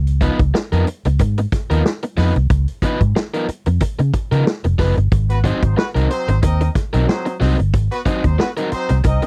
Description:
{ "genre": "funk", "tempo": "92 BPM", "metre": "4/4", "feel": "swing 56% on 16ths", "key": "unclear", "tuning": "A4 = 439 Hz", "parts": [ { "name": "vintage muted fingered electric bass", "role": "bass", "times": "0.0-9.2 s", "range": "F1 to Db3", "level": "-18 LUFS", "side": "equal", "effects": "none" }, { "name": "vintage drum kit", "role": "drums", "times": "0.1-9.3 s", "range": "hi-hat, kick drum, snare drum", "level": "-22 LUFS", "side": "equal", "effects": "none" }, { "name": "overdriven electric guitar", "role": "accompaniment", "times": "0.2-9.3 s", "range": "F3 to C5", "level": "-24 LUFS", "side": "equal", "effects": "none" }, { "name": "warm horn section", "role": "second line", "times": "5.3-9.3 s", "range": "Gb3 to Eb5", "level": "-26 LUFS", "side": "equal", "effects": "none" } ], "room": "little or no reverb", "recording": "dry, close 1970s-style studio recording", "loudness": "-18 LUFS", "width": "mono", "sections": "0.0-9.3 A section", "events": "none", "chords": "0.0 Db13; 5.1 Ab9" }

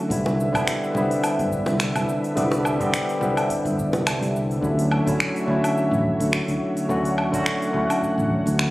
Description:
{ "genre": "sunset chillout", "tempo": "106 BPM", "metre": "4/4", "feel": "swing 55% on 16ths", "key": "unclear", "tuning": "A4 = 443 Hz", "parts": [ { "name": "barky tine electric piano", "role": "accompaniment", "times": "0.0-8.7 s", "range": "D3 to G4", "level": "-23 LUFS", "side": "equal", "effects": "auto-pan, vintage 12-bit sampler grit, ping-pong delay" }, { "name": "lush unison pad", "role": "sustained chords", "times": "0.0-8.7 s", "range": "D3 to F#5", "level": "-30 LUFS", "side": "right 1 dB", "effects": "chorus, phaser" }, { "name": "sustaining fretless electric bass", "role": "bass", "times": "0.1-8.7 s", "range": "G1 to D2", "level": "-24 LUFS", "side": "equal", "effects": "none" }, { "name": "deep house drum kit", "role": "drums", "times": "0.1-8.7 s", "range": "cabasa, finger snaps, hi-hat, woodblock", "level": "-27 LUFS", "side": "equal", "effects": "none" }, { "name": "electronic kick drum", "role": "drums", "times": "0.1-8.4 s", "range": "none", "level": "-35 LUFS", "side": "equal", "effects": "none" }, { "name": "bongos", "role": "percussion", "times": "0.3-4.0 s", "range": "none", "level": "-30 LUFS", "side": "equal", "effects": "none" } ], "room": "moderate lush hall reverb, RT60 2.4 s", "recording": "recorded on a phone in the room, studio reverb, compression", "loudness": "-20 LUFS", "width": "side -18 dB against mid", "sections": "0.0-4.6 A section; 4.6-8.7 B section", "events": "none", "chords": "0.1 Cmaj9; 4.6 Dmaj9" }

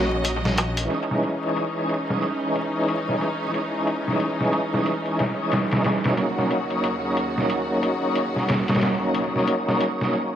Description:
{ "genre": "trip hop", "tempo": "91 BPM", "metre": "4/4", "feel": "swing 59% on 16ths", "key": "C# dorian", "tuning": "A4 = 441 Hz", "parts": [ { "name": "overdriven tonewheel organ", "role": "accompaniment", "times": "0.0-10.4 s", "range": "E3 to F#4", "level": "-23 LUFS", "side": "equal", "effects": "chorus vibrato, slow rotary speaker, tremolo, tape echo" }, { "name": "rich studio string section", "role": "sustained chords", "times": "0.0-10.1 s", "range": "D#2 to D#5", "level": "-30 LUFS", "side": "left 1 dB", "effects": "none" }, { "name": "dark detuned saw bass", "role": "bass", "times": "0.0-0.9 s", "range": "A#1", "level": "-26 LUFS", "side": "equal", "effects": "none" }, { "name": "darbuka", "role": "percussion", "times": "0.1-0.9 s", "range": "none", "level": "-32 LUFS", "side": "right 1 dB", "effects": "dub echo" }, { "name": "trip hop sampler-style drum kit", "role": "drums", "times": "0.2-10.1 s", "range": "hi-hat, snare drum", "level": "-26 LUFS", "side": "equal", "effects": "low-pass filter on kick, low-pass filter on hats, low-pass filter on snare, dub echo" } ], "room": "light reverb", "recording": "echo-heavy mix, vinyl crackle", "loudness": "-21 LUFS", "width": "side -10 dB against mid", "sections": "0.9-10.4 A section", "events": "break 0.0-0.9", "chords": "0.0 D#m7; 0.9 C#madd9; 6.2 D#m7" }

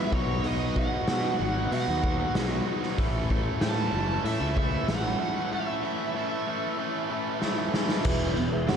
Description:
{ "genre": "classic rock", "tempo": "95 BPM", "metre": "4/4", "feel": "straight", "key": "unclear", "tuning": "A4 = 440 Hz", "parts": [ { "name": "smooth overdriven lead guitar", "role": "melody", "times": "0.0-7.7 s", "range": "C#5 to A5", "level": "-33 LUFS", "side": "right 3 dB", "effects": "tape echo" }, { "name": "biting overdriven guitar", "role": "riff", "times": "0.0-8.8 s", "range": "E2 to A4", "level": "-33 LUFS", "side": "right 9 dB", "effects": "slapback echo" }, { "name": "overdriven electric guitar", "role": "riff", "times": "0.0-8.8 s", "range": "E2 to F#4", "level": "-33 LUFS", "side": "left 10 dB", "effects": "slapback echo" }, { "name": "fuzz picked electric bass", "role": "bass", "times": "0.1-8.8 s", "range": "E1 to B2", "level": "-30 LUFS", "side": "equal", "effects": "overdrive" }, { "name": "raw garage drum kit", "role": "drums", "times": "0.1-8.8 s", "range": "crash cymbal, hi-hat, kick drum, snare drum", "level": "-29 LUFS", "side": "equal", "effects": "none" }, { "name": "mellow reed electric piano", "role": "accompaniment", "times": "8.0-8.8 s", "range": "F#4 to F#5", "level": "-33 LUFS", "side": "right 4 dB", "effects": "fast tremolo" }, { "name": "string machine, cellos", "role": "sustained chords", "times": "8.1-8.8 s", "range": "C#4 to F#5", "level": "-35 LUFS", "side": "left 1 dB", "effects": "ensemble chorus" } ], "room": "moderate lush hall reverb, RT60 2.5 s", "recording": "big arena sound, cassette tape", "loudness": "-25 LUFS", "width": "side -7 dB against mid", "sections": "0.0-8.1 A section", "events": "drum fill 7.4-8.1", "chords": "0.1 B; 3.0 A; 8.1 E" }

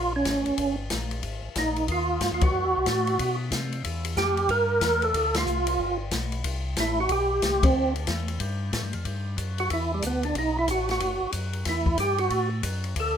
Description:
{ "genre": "soul jazz organ trio", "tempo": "184 BPM", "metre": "4/4", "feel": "swing 63% on 8ths", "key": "G major from 9.1 s", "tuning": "A4 = 444 Hz", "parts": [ { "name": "percussive tonewheel organ", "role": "melody", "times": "0.0-13.2 s", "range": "G3 to Bb4", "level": "-24 LUFS", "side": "right 2 dB", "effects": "slow rotary speaker, overdrive, chorus vibrato" }, { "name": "tonewheel organ", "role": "bass", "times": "0.0-13.2 s", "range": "F#1 to C3", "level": "-30 LUFS", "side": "left 1 dB", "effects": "slow rotary speaker" }, { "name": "open jazz drum kit", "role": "drums", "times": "0.3-13.1 s", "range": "hi-hat, kick drum, ride cymbal, snare drum", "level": "-30 LUFS", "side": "left 2 dB", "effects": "none" } ], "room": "light reverb", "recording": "minimal, uncompressed stereo recording", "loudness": "-23 LUFS", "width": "side -8 dB against mid", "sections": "0.0-9.1 A section; 9.1-13.2 B section", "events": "band accent 2.4, 5.3, 7.6; tonewheel organ solo 9.1-13.2", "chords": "0.0 Bbm7; 0.6 Gm; 1.2 Abmaj9; 2.5 F#m7b5; 3.2 N.C.; 3.8 Em; 5.1 Dm7; 5.8 G; 6.4 C5; 7.7 Dsus2; 8.4 Gsus2; 9.1 G5; 10.4 B5; 11.7 Emadd9" }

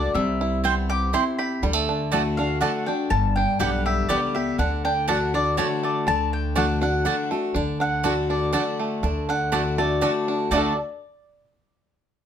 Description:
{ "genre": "bluegrass", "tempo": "122 BPM", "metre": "3/4", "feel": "straight", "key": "D major", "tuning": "A4 = 440 Hz", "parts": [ { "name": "mandolin", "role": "melody", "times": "0.0-10.8 s", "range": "C#5 to D6", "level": "-26 LUFS", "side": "left 1 dB", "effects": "plate reverb" }, { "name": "picked steel-string acoustic guitar", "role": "accompaniment", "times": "0.0-10.7 s", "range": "G2 to G4", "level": "-26 LUFS", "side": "left 4 dB", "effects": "none" }, { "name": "bluegrass banjo", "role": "arpeggios", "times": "0.0-10.8 s", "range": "D3 to A4", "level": "-28 LUFS", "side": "right 5 dB", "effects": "none" }, { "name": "upright bass", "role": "bass", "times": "0.0-10.8 s", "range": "G1 to D2", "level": "-27 LUFS", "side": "equal", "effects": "none" }, { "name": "mandolin", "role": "stabs", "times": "0.6-10.7 s", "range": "A3 to A5", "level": "-26 LUFS", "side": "right 6 dB", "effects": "none" } ], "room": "moderate studio reverb, RT60 0.6 s", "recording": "none", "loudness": "-21 LUFS", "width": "side -9 dB against mid", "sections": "0.0-7.5 A section; 7.5-10.5 B section; 10.5-12.0 C section", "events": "none", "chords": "0.2 C; 1.6 D; 3.1 G; 4.6 D" }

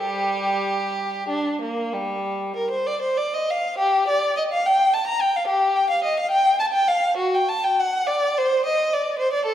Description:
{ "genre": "classical, baroque-style suite movement for unaccompanied violin", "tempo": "62-74 BPM (dotted quarters)", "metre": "12/8", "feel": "rubato", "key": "G minor", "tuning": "A4 = 440 Hz", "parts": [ { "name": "rich violin", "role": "solo", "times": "0.0-9.5 s", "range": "G3 to Bb5", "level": "-20 LUFS", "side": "equal", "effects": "none" } ], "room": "wet recital hall reverb, RT60 1.6 s", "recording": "heard from further back in the room", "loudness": "-19 LUFS", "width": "side -10 dB against mid", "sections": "0.0-3.8 A section; 3.8-9.5 B section", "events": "none", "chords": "none" }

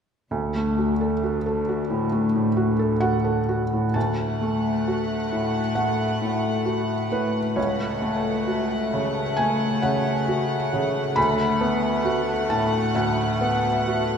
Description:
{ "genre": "cinematic, emotional film score for orchestra", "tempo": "66 BPM", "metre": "4/4", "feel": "rubato", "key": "unclear", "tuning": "A4 = 440 Hz", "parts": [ { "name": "felt-muted upright piano", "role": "accompaniment", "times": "0.3-14.2 s", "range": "C#2 to B5", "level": "-22 LUFS", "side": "equal", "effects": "none" }, { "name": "rich symphonic cello section", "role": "bass", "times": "0.3-3.7 s", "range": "D2", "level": "-31 LUFS", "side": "left 1 dB", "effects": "none" }, { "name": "warm symphonic violin section", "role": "second line", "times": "4.0-14.2 s", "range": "A3 to F#5", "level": "-27 LUFS", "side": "left 2 dB", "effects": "none" } ], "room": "wet church reverb, RT60 3.0 s", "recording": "recorded in a church or concert hall", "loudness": "-21 LUFS", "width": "side -7 dB against mid", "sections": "0.3-4.0 A section; 4.0-14.2 B section", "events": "none", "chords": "0.3 D; 7.6 F#m/C#; 11.2 Bm7/D" }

